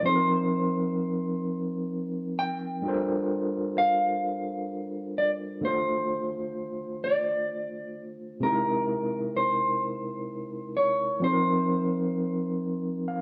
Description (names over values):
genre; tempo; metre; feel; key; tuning
R&B; 43 BPM (dotted quarters); 6/8; straight; unclear; A4 = 444 Hz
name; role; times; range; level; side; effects
mellow electric guitar; melody; 0.0-13.0 s; Bb4 to G5; -30 LUFS; equal; none
overdriven tine electric piano; accompaniment; 0.0-13.2 s; C3 to F5; -31 LUFS; equal; fast tremolo
room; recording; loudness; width
wet large studio reverb, RT60 1.2 s; band playing live in one room; -28 LUFS; mono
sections
0.0-13.2 A section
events
tine electric piano fill 12.6-13.2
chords
0.0 F7sus4; 2.8 Gm11; 5.6 Dm7; 8.4 C7alt; 11.2 F7sus4